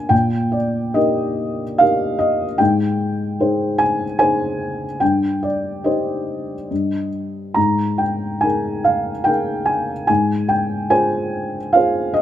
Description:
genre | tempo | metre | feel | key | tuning
classical, lyrical solo piano | 72 BPM | 3/4 | uneven beats, rubato | unclear | A4 = 440 Hz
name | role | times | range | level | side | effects
felt-muted upright piano | solo | 0.0-12.2 s | G2 to Bb5 | -17 LUFS | equal | none
room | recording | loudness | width
moderate recital hall reverb, RT60 1.8 s | close, detailed microphones | -17 LUFS | side -11 dB against mid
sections
0.0-12.2 A section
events
none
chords
0.1 Eb/Bb; 2.6 Ab; 5.0 Cm/G; 6.7 N.C.; 7.6 Absus2; 10.1 Fm/Ab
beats
| 0.11 0.96 1.80 | 2.60 3.40 4.19 | 5.01 5.85 6.71 | 7.57 8.43 9.27 | 10.10 10.91 11.74

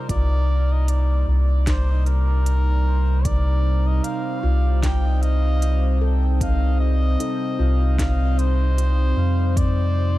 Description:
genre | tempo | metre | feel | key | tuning
ambient dub | 76 BPM | 4/4 | swing 57% on 16ths | C dorian | A4 = 440 Hz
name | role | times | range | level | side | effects
trumpet with cup mute | melody | 0.0-10.2 s | Bb4 to G5 | -30 LUFS | equal | tape echo
warbly tape-like pad | sustained chords | 0.0-10.2 s | C3 to D6 | -28 LUFS | right 1 dB | chorus, built-in reverb
handpan | arpeggios | 0.0-10.2 s | Eb4 to A4 | -37 LUFS | left 1 dB | tape echo
soft dub sub bass | bass | 0.1-10.2 s | C2 to F2 | -18 LUFS | equal | none
electronic kick drum | drums | 0.1-9.7 s | none | -24 LUFS | equal | studio reverb
organic electronic drum kit | drums | 0.1-9.8 s | hi-hat, snare drum | -34 LUFS | equal | studio reverb, dub echo
room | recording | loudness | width
light reverb | none | -18 LUFS | side -16 dB against mid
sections
0.0-10.2 A section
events
none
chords
0.0 Cm9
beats
| 0.09 0.88 1.67 2.46 | 3.25 4.04 4.83 5.62 | 6.41 7.20 7.99 8.78 | 9.57

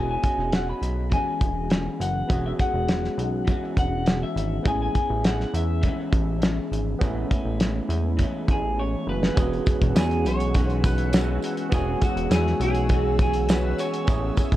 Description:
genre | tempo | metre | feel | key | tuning
indie pop, bedroom pop | 102 BPM | 4/4 | straight | E major | A4 = 440 Hz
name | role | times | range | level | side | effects
electric guitar through a small old amp | melody | 0.0-14.6 s | F#4 to B5 | -29 LUFS | equal | lush chorus, analog delay
barky tine electric piano | accompaniment | 0.0-14.6 s | A3 to G#4 | -32 LUFS | right 3 dB | overdrive, cassette tape
electric guitar through a small old amp | accompaniment | 0.0-14.6 s | A2 to F#4 | -31 LUFS | left 3 dB | lush chorus, vibrato effect, analog delay
chorused synth bass | bass | 0.0-14.6 s | E1 to E2 | -26 LUFS | equal | none
cloth-damped thuddy drum kit | drums | 0.2-14.6 s | hi-hat, kick drum, snare drum | -23 LUFS | equal | none
phased analog pad | sustained chords | 9.6-14.6 s | C#5 to E6 | -36 LUFS | right 1 dB | phaser, chorus
tambourine | percussion | 9.4-14.5 s | none | -44 LUFS | right 6 dB | analog delay
room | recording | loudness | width
light reverb, small room ambience | echo-heavy mix, cassette tape | -21 LUFS | side -14 dB against mid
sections
0.0-9.4 A section; 9.4-14.6 B section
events
drum fill 8.8-9.4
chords
0.0 E69; 4.7 Amaj7; 9.4 E69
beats
0.53 1.12 1.71 | 2.30 2.89 3.48 4.07 | 4.66 5.25 5.84 6.42 | 7.01 7.60 8.19 8.78 | 9.37 9.96 10.55 11.14 | 11.72 12.31 12.90 13.49 | 14.08

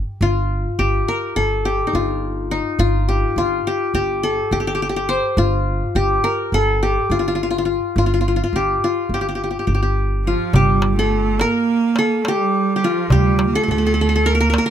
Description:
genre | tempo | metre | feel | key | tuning
Turkish makam ensemble | 209 BPM (eighths) | 9/8 | straight | G makam ussak | A4 = 440 Hz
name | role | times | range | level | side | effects
qanun | melody | 0.0-14.7 s | Eb4 to C5 | -19 LUFS | left 2 dB | none
upright bass | bass | 0.2-14.5 s | G1 to D2 | -21 LUFS | equal | none
clear cello | second line | 10.3-14.7 s | F3 to Bb3 | -20 LUFS | right 6 dB | none
darbuka | percussion | 10.5-14.7 s | none | -19 LUFS | right 2 dB | none
room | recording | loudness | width
little or no reverb | close, detailed microphones | -16 LUFS | side -9 dB against mid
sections
0.0-10.5 A section; 10.5-14.7 B section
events
none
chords
none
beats
| 0.22 0.50 0.79 1.08 1.36 1.65 1.94 2.22 2.51 | 2.80 3.08 3.37 3.66 3.94 4.23 4.52 4.80 5.09 | 5.38 5.67 5.95 6.24 6.53 6.81 7.10 7.38 7.67 | 7.96 8.24 8.53 8.82 9.10 9.39 9.68 9.96 10.25 | 10.54 10.82 11.11 11.39 11.68 11.96 12.25 12.54 12.82 | 13.11 13.39 13.68 13.96 14.25 14.53

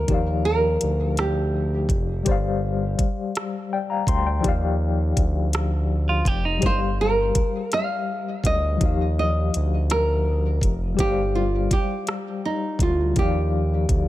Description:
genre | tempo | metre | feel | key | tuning
slow six-eight R&B | 55 BPM (dotted quarters) | 6/8 | straight | unclear | A4 = 440 Hz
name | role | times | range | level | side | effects
nylon-string guitar | melody | 0.0-2.0, 6.7-14.1 s | Eb4 to F5 | -25 LUFS | right 2 dB | tape echo
tine electric piano | accompaniment | 0.0-14.1 s | F3 to C6 | -27 LUFS | left 6 dB | medium tremolo
smooth synth bass | bass | 0.0-14.1 s | F1 to Eb2 | -23 LUFS | equal | none
smooth R&B drum kit | drums | 0.1-14.1 s | hi-hat, kick drum, rim click | -24 LUFS | equal | none
clean electric guitar | second line | 6.1-6.8 s | Eb4 to G4 | -26 LUFS | right 3 dB | none
room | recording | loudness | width
little or no reverb | none | -20 LUFS | side -15 dB against mid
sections
0.0-14.1 A section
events
none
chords
0.1 Ebmaj9; 2.3 G7sus4; 4.4 Ebmaj9; 6.6 G7sus4; 8.8 Ebmaj9; 11.0 G7sus4; 13.2 Ebmaj9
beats
| 0.08 1.17 | 2.26 3.35 | 4.45 5.54 | 6.63 7.72 | 8.81 9.90 | 10.99 12.08 | 13.17

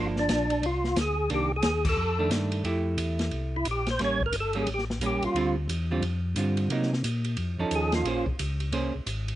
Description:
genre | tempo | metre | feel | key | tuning
soul jazz organ trio | 178 BPM | 4/4 | swing 62% on 8ths | F major | A4 = 442 Hz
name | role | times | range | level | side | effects
percussive tonewheel organ | melody | 0.0-5.6, 7.8-8.3 s | D4 to C#5 | -28 LUFS | equal | slow rotary speaker, overdrive, chorus vibrato
vintage hollow-body jazz guitar | accompaniment | 0.0-8.9 s | D3 to C5 | -30 LUFS | right 3 dB | none
mellow tonewheel organ | bass | 0.0-9.4 s | G1 to C3 | -30 LUFS | left 1 dB | slow rotary speaker
open jazz drum kit | drums | 0.2-9.3 s | crash cymbal, hi-hat, kick drum, ride cymbal, snare drum | -33 LUFS | equal | none
room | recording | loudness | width
little or no reverb | recorded outdoors, with no room sound, nothing above 10.8 kHz | -25 LUFS | side -14 dB against mid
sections
0.0-2.7 A section; 2.7-9.4 B section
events
band accent 1.8; tonewheel organ solo 2.7-9.4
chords
0.0 Gm7; 1.3 Cm9; 2.0 F13; 2.7 Fmaj9; 4.0 A7b9; 5.4 Dm11; 6.7 Cm7b5; 7.4 F7b13; 8.1 Bbm9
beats
0.29 0.63 0.97 | 1.30 1.64 1.98 2.32 | 2.65 2.99 3.33 3.66 | 4.00 4.34 4.68 5.01 | 5.35 5.69 6.03 6.37 | 6.70 7.04 7.38 7.72 | 8.06 8.39 8.73 9.07

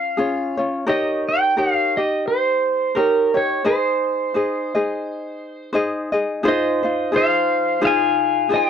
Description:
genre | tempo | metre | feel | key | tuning
Hawaiian | 86 BPM | 4/4 | swing 57% on 8ths | Ab major | A4 = 437 Hz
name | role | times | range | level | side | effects
pedal steel guitar | melody | 0.0-8.7 s | Bb4 to Ab5 | -19 LUFS | right 1 dB | none
ukulele | accompaniment | 0.0-8.7 s | Db4 to Eb5 | -22 LUFS | left 2 dB | none
room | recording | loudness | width
light reverb | dry, close 1970s-style studio recording | -17 LUFS | side -8 dB against mid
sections
0.0-6.4 A section; 6.4-8.7 B section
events
none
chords
0.0 Db; 0.9 Eb7; 3.7 Ab; 6.4 Fm7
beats
0.17 | 0.87 1.57 2.26 2.96 | 3.65 4.35 5.04 5.74 | 6.44 7.13 7.83 8.52

